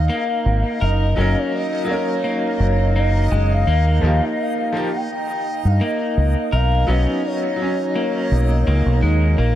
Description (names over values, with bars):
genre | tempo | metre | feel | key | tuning
trip hop | 84 BPM | 4/4 | swing 54% on 16ths | unclear | A4 = 440 Hz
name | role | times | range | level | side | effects
pure breathy sine lead | melody | 0.0-9.0 s | Db5 to G5 | -25 LUFS | equal | wide subtle chorus, tape echo
warbly tape-like pad | sustained chords | 0.0-9.6 s | Eb4 to Eb5 | -27 LUFS | equal | chorus, built-in reverb
deep dub fingered electric bass | bass | 0.0-9.6 s | Gb1 to G2 | -16 LUFS | equal | tube saturation
backwards swelling texture | texture | 0.0-9.6 s | Eb5 | -35 LUFS | right 1 dB | built-in reverb
electric guitar at the edge of break-up | arpeggios | 0.1-9.6 s | Ab3 to Bb4 | -25 LUFS | equal | tape echo
bright upright piano | accompaniment | 1.2-9.4 s | F3 to Bb4 | -25 LUFS | left 1 dB | tremolo, tape echo
room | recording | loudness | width
light reverb | echo-heavy mix, vinyl crackle | -16 LUFS | side -12 dB against mid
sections
0.0-9.6 A section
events
none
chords
0.0 Bb7(no3); 0.8 Gb; 3.7 Ebadd9; 6.5 Bsus2